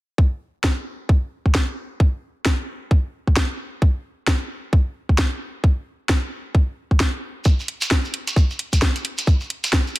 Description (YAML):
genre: UK garage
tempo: 132 BPM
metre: 4/4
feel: swing 60% on 16ths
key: none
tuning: none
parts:
  - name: electronic kick drum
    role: drums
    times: 0.2-9.8 s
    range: none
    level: -16 LUFS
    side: equal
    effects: overdrive, studio ambience
  - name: garage drum kit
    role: drums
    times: 0.6-10.0 s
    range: hi-hat, snare drum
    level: -23 LUFS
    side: equal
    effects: overdrive, studio ambience
  - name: shekere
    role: percussion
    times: 7.4-9.9 s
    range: none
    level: -28 LUFS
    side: right 2 dB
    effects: none
room: digital ambience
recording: dense, heavily limited modern master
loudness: -19 LUFS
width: side -19 dB against mid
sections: 0.2-10.0 A section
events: none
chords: none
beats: | 0.18 0.64 1.09 1.55 | 2.00 2.46 2.91 3.36 | 3.82 4.27 4.73 5.18 | 5.64 6.09 6.55 7.00 | 7.46 7.91 8.36 8.82 | 9.27 9.73